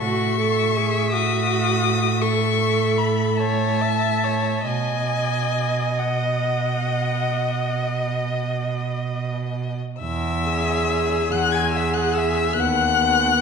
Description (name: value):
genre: classical, slow romantic movement for string quartet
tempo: 44-57 BPM (dotted quarters)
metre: 12/8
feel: rubato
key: E major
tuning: A4 = 440 Hz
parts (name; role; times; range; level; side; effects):
- warm violin; melody; 0.0-13.4 s; F#5 to G#6; -24 LUFS; left 10 dB; none
- rich violin; second line; 0.0-13.4 s; D#5 to G#5; -28 LUFS; left 5 dB; none
- rich viola; accompaniment; 0.0-13.4 s; B3 to E5; -25 LUFS; right 2 dB; none
- rich cello; bass; 0.0-13.4 s; D#2 to B2; -24 LUFS; right 4 dB; none
room: wet scoring stage reverb, RT60 2.0 s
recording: dark, warm production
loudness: -19 LUFS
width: side -6 dB against mid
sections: 0.0-10.0 A section; 10.0-13.4 B section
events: none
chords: 0.0 F#m7/A; 4.7 B; 10.0 E; 12.6 B/D#